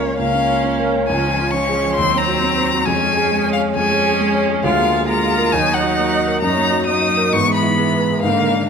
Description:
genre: quick classical-period movement for piano quartet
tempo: 134 BPM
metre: 4/4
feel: rubato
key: Eb minor from 4.6 s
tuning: A4 = 440 Hz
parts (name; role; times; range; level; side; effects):
- rich violin; melody; 0.0-8.7 s; Db5 to Eb6; -19 LUFS; left 5 dB; none
- rich cello; second line; 0.0-8.7 s; D3 to Bb3; -23 LUFS; right 7 dB; none
- dark baby grand piano; accompaniment; 0.0-8.7 s; Db2 to F5; -19 LUFS; left 1 dB; none
- rich viola; accompaniment; 0.0-8.7 s; Bb3 to F4; -22 LUFS; right 5 dB; none
room: wet recital hall reverb, RT60 1.7 s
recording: minimal, uncompressed stereo recording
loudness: -14 LUFS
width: side -6 dB against mid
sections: 0.0-8.7 A section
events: none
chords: 0.0 Bbm/Db; 1.1 Db; 2.0 Cdim/Eb; 2.9 Db/F; 4.6 Bb7/D; 5.5 Ebm; 6.4 Ebm/Gb; 7.3 E/G#

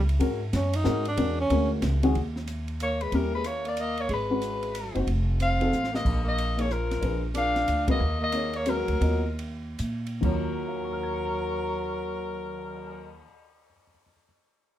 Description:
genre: jazz, small-group swing and bop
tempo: 129-185 BPM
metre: 3/4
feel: swing 64% on 8ths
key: Eb minor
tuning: A4 = 440 Hz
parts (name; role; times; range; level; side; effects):
- upright bass; bass; 0.0-13.2 s; F1 to Bb2; -29 LUFS; equal; none
- open jazz drum kit; drums; 0.1-12.9 s; crash cymbal, cymbal swell, hi-hat, kick drum, ride cymbal, snare drum; -36 LUFS; equal; none
- dark baby grand piano; accompaniment; 0.2-14.2 s; Eb2 to F7; -30 LUFS; left 2 dB; none
- warm tenor saxophone; second line; 0.6-13.2 s; F3 to Eb4; -32 LUFS; right 2 dB; none
- warm soprano saxophone; melody; 2.8-13.2 s; Bb4 to F5; -30 LUFS; left 2 dB; plate reverb
room: light reverb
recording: none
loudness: -25 LUFS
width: side -12 dB against mid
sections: 0.0-2.2 A section; 2.2-10.2 B section; 10.2-13.0 C section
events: tenor saxophone solo 0.0-2.2; drum fill 5.7-6.1; band accent 7.8; slowing down 8.0-10.2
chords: 0.2 Absus2; 1.2 E13; 2.2 Eb7(no3); 3.1 Eb7b9; 4.1 Abm7; 5.1 F; 6.1 Bb5; 7.0 Bb7b9; 8.0 Ebm7; 10.2 Ebm9

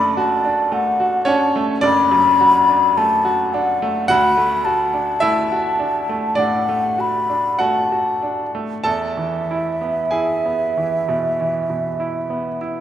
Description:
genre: classical, romantic duo for flute and grand piano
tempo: 47-54 BPM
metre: 4/4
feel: rubato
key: unclear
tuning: A4 = 439 Hz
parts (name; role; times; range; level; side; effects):
- mellow hollow concert flute; melody; 0.0-12.8 s; E5 to B5; -18 LUFS; left 2 dB; none
- bright baby grand piano; accompaniment; 0.0-12.8 s; F#1 to A5; -20 LUFS; right 2 dB; none
room: moderate concert hall reverb, RT60 2.2 s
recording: none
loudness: -16 LUFS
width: side -10 dB against mid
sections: 0.0-12.8 A section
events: none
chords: 0.0 D/F#; 4.1 D; 8.8 E

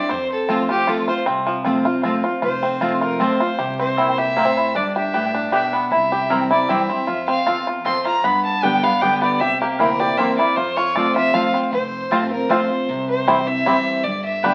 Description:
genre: bluegrass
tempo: 155 BPM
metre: 3/4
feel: straight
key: F major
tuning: A4 = 441 Hz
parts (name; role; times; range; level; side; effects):
- rich fiddle; melody; 0.0-14.5 s; F4 to C6; -24 LUFS; equal; none
- picked steel-string acoustic guitar; accompaniment; 0.0-14.5 s; E2 to G4; -26 LUFS; equal; none
- bluegrass banjo; arpeggios; 0.0-14.5 s; F3 to Bb4; -23 LUFS; equal; none
- upright bass; bass; 0.1-14.5 s; F1 to G2; -39 LUFS; equal; none
- mandolin; stabs; 0.5-14.5 s; Bb3 to A5; -28 LUFS; equal; none
room: wet studio reverb, RT60 0.7 s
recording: very old 78 rpm record, vinyl crackle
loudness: -19 LUFS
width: mono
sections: 0.0-2.4 A section; 2.4-11.7 B section; 11.7-14.5 B section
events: none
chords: 0.1 F; 3.6 C; 4.8 G; 5.9 C; 7.1 F; 8.2 G; 9.4 C7; 10.6 F; 12.9 C

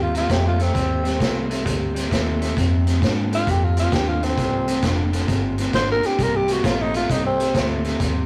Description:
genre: electric blues shuffle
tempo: 132 BPM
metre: 4/4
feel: swing 66% on 8ths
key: C minor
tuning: A4 = 440 Hz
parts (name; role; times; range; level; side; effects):
- growling tenor saxophone; melody; 0.0-7.7 s; C4 to C5; -25 LUFS; equal; none
- electric guitar through a small old amp; riff; 0.0-8.3 s; F2 to A3; -28 LUFS; equal; none
- vintage muted fingered electric bass; bass; 0.0-8.3 s; F1 to Ab2; -26 LUFS; equal; none
- vintage drum kit; drums; 0.1-8.1 s; hi-hat, kick drum, snare drum; -26 LUFS; equal; none
room: moderate studio ambience, RT60 0.5 s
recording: rough rehearsal-room recording, warm saturation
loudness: -21 LUFS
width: mono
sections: 0.0-8.3 A section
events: tenor saxophone solo 0.0-8.3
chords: 0.0 Cmadd9; 2.6 Fm9; 6.2 Cm9

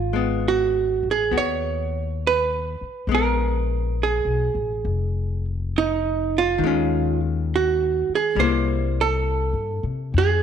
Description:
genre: jazz ballad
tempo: 68 BPM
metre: 4/4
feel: swing 69% on 8ths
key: unclear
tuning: A4 = 445 Hz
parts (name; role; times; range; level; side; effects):
- archtop guitar, miked and amplified; melody; 0.0-10.4 s; Eb4 to Db5; -22 LUFS; right 7 dB; none
- upright bass; bass; 0.0-10.4 s; F1 to C3; -25 LUFS; left 2 dB; none
- archtop guitar, miked and amplified; accompaniment; 0.1-10.2 s; Eb3 to Gb4; -26 LUFS; left 10 dB; none
room: moderate echo chamber reverb, RT60 1.5 s, small room ambience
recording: 1960s-style stereo with parts hard left and right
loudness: -20 LUFS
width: side -8 dB against mid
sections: 0.0-10.4 A section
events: none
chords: 0.0 Abm7; 3.1 Bb5; 6.6 Eb7sus4; 8.4 C7

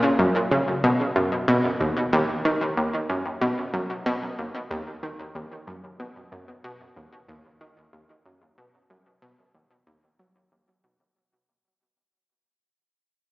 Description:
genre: ambient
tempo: 93 BPM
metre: 4/4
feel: straight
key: B major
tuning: A4 = 440 Hz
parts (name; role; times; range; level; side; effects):
- analog pluck; riff; 0.2-11.0 s; D#2 to F#3; -22 LUFS; equal; chorus, tape echo
room: wet concert hall reverb, RT60 2.2 s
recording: worn, warbling old tape, cassette tape, warbly pitch drift, small speaker sound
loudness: -22 LUFS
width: side -19 dB against mid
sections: 0.0-11.2 A section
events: fade-out on synth arpeggio sound 0.0-11.2; fade-out 0.0-11.2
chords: none

